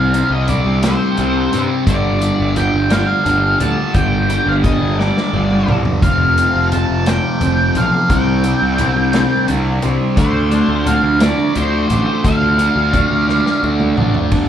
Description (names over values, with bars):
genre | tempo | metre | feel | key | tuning
psychedelic rock | 58 BPM (dotted quarters) | 6/8 | straight | unclear | A4 = 440 Hz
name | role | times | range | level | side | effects
octave-fuzz lead guitar | melody | 0.0-13.6 s | C5 to A5 | -19 LUFS | equal | distortion
string machine, cellos | sustained chords | 0.0-14.3 s | D3 to G4 | -26 LUFS | right 2 dB | none
fuzz guitar | riff | 0.0-14.5 s | F2 to D4 | -17 LUFS | equal | distortion, phaser
fuzz picked electric bass | bass | 0.0-14.5 s | F1 to G2 | -18 LUFS | equal | overdrive
vintage drum kit | drums | 0.1-14.5 s | hi-hat, kick drum, ride cymbal, snare drum, toms | -20 LUFS | equal | none
congas | percussion | 0.5-14.1 s | none | -26 LUFS | left 1 dB | none
room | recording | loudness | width
moderate large studio reverb, RT60 1.1 s | band playing live in one room | -13 LUFS | side -9 dB against mid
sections
0.0-14.3 A section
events
drum fill 5.0-6.0, 13.3-14.3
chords
0.0 Csus2; 1.9 Gm7; 6.0 F7; 8.1 Csus2; 10.2 Dm7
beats
0.83 | 1.87 2.91 | 3.95 4.99 | 6.03 7.07 | 8.11 9.14 | 10.18 11.22 | 12.26 13.29 | 14.33